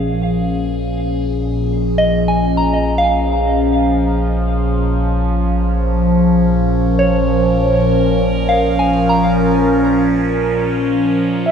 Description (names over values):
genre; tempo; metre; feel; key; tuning
ambient; 60 BPM; 4/4; straight; Bb minor; A4 = 440 Hz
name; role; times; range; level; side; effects
evolving wavetable pad; sustained chords; 0.0-11.5 s; Bb2 to Bb4; -15 LUFS; equal; phaser, built-in reverb
soft synth bell; arpeggios; 0.0-11.5 s; Db5 to Bb5; -20 LUFS; equal; chorus, diffuse ambient delay
deep rumbling drone; bass; 0.0-11.5 s; Bb1; -21 LUFS; equal; built-in reverb
room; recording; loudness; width
wet cathedral reverb, RT60 6.2 s; dark, warm production; -13 LUFS; side -7 dB against mid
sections
0.0-11.5 A section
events
fade-in on synth drone 0.0-11.5; filter sweep on ambient pad 0.0-11.5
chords
0.0 Bbm7